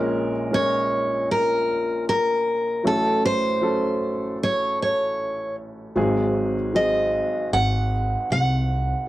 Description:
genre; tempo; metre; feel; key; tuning
folk; 77 BPM; 4/4; straight; unclear; A4 = 440 Hz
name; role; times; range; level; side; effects
warm upright piano; accompaniment; 0.0-9.1 s; Ab1 to Bb4; -25 LUFS; equal; none
picked steel-string acoustic guitar; melody; 0.5-9.1 s; A4 to Gb5; -22 LUFS; equal; cassette tape
upright bass; bass; 6.0-8.9 s; Ab1 to C2; -24 LUFS; equal; none
room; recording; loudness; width
moderate small room ambience, RT60 0.5 s; home recording on cassette; -20 LUFS; side -15 dB against mid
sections
0.0-9.1 A section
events
none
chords
0.0 Bbm7; 2.8 Gbm/A; 6.0 Ab7

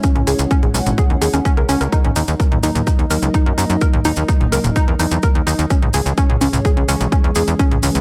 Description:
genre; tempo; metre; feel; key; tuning
melodic techno; 127 BPM; 4/4; straight; Eb phrygian; A4 = 440 Hz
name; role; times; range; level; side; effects
dark analog pad; sustained chords; 0.0-8.0 s; Fb3 to Gb5; -27 LUFS; equal; chorus, sidechain pumping
analog pluck; arpeggios; 0.0-7.9 s; Db4 to Bb4; -24 LUFS; equal; chorus, sidechain pumping, analog delay
electronic kick drum; drums; 0.0-7.7 s; none; -18 LUFS; equal; overdrive
house drum kit; drums; 0.0-8.0 s; hi-hat, toms; -27 LUFS; equal; overdrive
maracas; percussion; 0.0-8.0 s; none; -30 LUFS; equal; none
tight sequencer bass; bass; 0.2-8.0 s; Eb1 to Gb2; -21 LUFS; equal; sidechain pumping
room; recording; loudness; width
light reverb; echo-heavy mix; -16 LUFS; mono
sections
0.0-8.0 A section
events
none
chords
0.0 Dbm; 1.9 Ebm; 5.7 Dbm

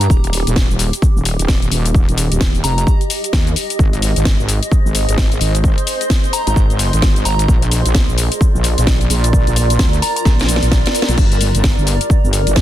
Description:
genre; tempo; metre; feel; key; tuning
bass house; 130 BPM; 4/4; swing 61% on 16ths; unclear; A4 = 440 Hz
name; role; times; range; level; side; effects
soft synth bell; melody; 0.0-2.8, 6.3-10.2 s; Bb5; -24 LUFS; right 2 dB; chorus, digital delay
wobble bass; bass; 0.0-12.6 s; Eb1 to Eb2; -16 LUFS; equal; chorus, tube saturation, sidechain pumping
house drum kit; drums; 0.0-12.6 s; crash cymbal, hi-hat, shaker, snare drum; -20 LUFS; left 2 dB; none
granular cloud pad; texture; 0.0-12.6 s; F4 to C6; -23 LUFS; right 1 dB; built-in reverb, sidechain pumping
electronic kick drum; drums; 0.1-12.6 s; none; -14 LUFS; equal; none
room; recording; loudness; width
little or no reverb; dense, heavily limited modern master; -12 LUFS; side -13 dB against mid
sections
0.0-12.6 A section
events
drum fill 10.3-11.2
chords
0.1 Eb; 3.8 Ab; 7.5 Bb; 11.2 Gm

